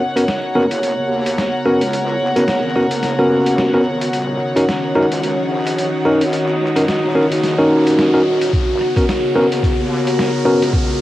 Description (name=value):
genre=glitch hop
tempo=109 BPM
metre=4/4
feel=swing 57% on 16ths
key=G# minor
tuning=A4 = 440 Hz
part: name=warbly tape-like pad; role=sustained chords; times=0.0-11.0 s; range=C#3 to A#4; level=-20 LUFS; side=equal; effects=chorus, built-in reverb, sidechain pumping, cassette tape
part: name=riser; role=sound effects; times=0.0-11.0 s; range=none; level=-32 LUFS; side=equal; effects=none
part: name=warm studio string section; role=texture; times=0.0-11.0 s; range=D#4 to F#5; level=-22 LUFS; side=equal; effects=sidechain pumping, cassette tape
part: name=bell-like tine electric piano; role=stabs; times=0.2-10.6 s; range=B3 to A#4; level=-17 LUFS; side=equal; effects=sidechain pumping, cassette tape, analog delay
part: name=boom bap sampler-style drum kit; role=drums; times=0.2-10.9 s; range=hi-hat, rim click, snare drum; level=-25 LUFS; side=equal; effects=cassette tape
part: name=wobble bass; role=bass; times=0.6-11.0 s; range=D#1 to D#2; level=-26 LUFS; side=equal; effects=chorus, high-pass filter
part: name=electronic kick drum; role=drums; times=8.5-10.9 s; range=none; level=-17 LUFS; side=equal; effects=cassette tape
room=moderate spring reverb, RT60 2.1 s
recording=home recording on cassette, vinyl crackle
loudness=-14 LUFS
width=side -14 dB against mid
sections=0.0-11.0 A section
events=build-up 0.0-11.0; riser 0.0-11.0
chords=0.0 G#m11 (rootless); 4.1 D#m7; 8.5 G#m11 (rootless)